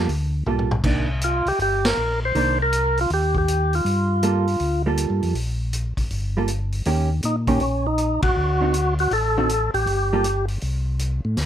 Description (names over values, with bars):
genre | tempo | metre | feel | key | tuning
soul jazz organ trio | 160 BPM | 4/4 | swing 66% on 8ths | G minor | A4 = 439 Hz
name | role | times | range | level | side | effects
vintage hollow-body jazz guitar | accompaniment | 0.0-10.2 s | D3 to A4 | -24 LUFS | right 4 dB | none
mellow tonewheel organ | bass | 0.0-11.5 s | G1 to Bb2 | -23 LUFS | equal | slow rotary speaker
vintage drum kit | drums | 0.1-11.5 s | crash cymbal, hi-hat, kick drum, ride cymbal, snare drum, toms | -28 LUFS | left 1 dB | none
percussive tonewheel organ | melody | 1.2-4.8, 7.3-10.5 s | Db4 to C5 | -21 LUFS | equal | slow rotary speaker
room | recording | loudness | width
little or no reverb | close, detailed microphones | -19 LUFS | side -10 dB against mid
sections
0.0-11.5 A section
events
drum fill 0.5-0.8; band accent 1.8, 8.2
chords
0.0 Gm9; 0.8 Cm9; 3.9 Gm9; 6.9 Eb7; 8.4 D7b9; 9.9 Gm9; 10.6 Am/C